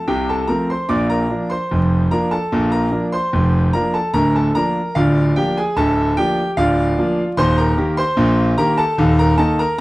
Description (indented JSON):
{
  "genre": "ragtime piano",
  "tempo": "74 BPM",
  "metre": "2/4",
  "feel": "straight",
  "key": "Bb major",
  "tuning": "A4 = 440 Hz",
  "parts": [
    { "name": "bright concert grand piano", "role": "solo", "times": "0.0-9.8 s", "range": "D1 to D6", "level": "-15 LUFS", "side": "equal", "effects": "none" }
  ],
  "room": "studio reverb",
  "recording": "dry, close 1970s-style studio recording, vinyl crackle",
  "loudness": "-15 LUFS",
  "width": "side -19 dB against mid",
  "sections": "0.0-9.8 A section",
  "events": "none",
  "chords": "0.0 F; 0.9 Bb; 4.1 Bb/D; 7.4 Eb; 9.0 Eb5"
}